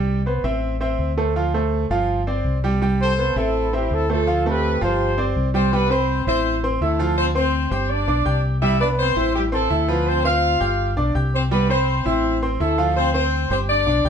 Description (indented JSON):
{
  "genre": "latin",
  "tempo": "166 BPM",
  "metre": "4/4",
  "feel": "straight",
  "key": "C major",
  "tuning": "A4 = 440 Hz",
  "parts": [
    { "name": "bright baby grand piano", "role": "accompaniment", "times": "0.0-14.1 s", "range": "F3 to G6", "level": "-22 LUFS", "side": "right 2 dB", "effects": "none" },
    { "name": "deep dub fingered electric bass", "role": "bass", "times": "0.0-14.1 s", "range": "G1 to D2", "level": "-23 LUFS", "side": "left 1 dB", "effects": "none" },
    { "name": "warm horn section", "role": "melody", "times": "3.0-5.3 s", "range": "E4 to C5", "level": "-22 LUFS", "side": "equal", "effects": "plate reverb" },
    { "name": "dark horn section", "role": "melody", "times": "5.6-14.1 s", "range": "G3 to F5", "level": "-21 LUFS", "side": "left 1 dB", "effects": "none" }
  ],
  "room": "wet studio reverb, RT60 0.5 s",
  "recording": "heard from further back in the room, nothing above 10.5 kHz",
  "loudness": "-18 LUFS",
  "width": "side -7 dB against mid",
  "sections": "0.0-5.7 A section; 5.7-14.1 B section",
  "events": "none",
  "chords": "0.0 Cmaj7; 0.6 Am; 1.4 Dm7; 2.1 G7sus4; 2.8 Cmaj7; 3.5 Am; 4.3 Dm7; 5.0 G7sus4; 5.7 Cmaj7; 6.4 Am; 7.2 Dm7; 7.9 Gsus4; 8.6 Cmaj7; 9.3 Am7; 10.1 Dm7; 10.8 G7sus4; 11.5 Cmaj7; 12.2 Am; 13.0 Dm7",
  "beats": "0.26 0.63 0.99 | 1.36 1.72 2.09 2.45 | 2.82 3.18 3.54 3.91 | 4.27 4.63 5.00 5.36 | 5.72 6.08 6.45 6.81 | 7.17 7.53 7.89 8.26 | 8.62 8.98 9.34 9.70 | 10.07 10.43 10.79 11.15 | 11.51 11.88 12.24 12.60 | 12.96 13.32 13.68 14.05"
}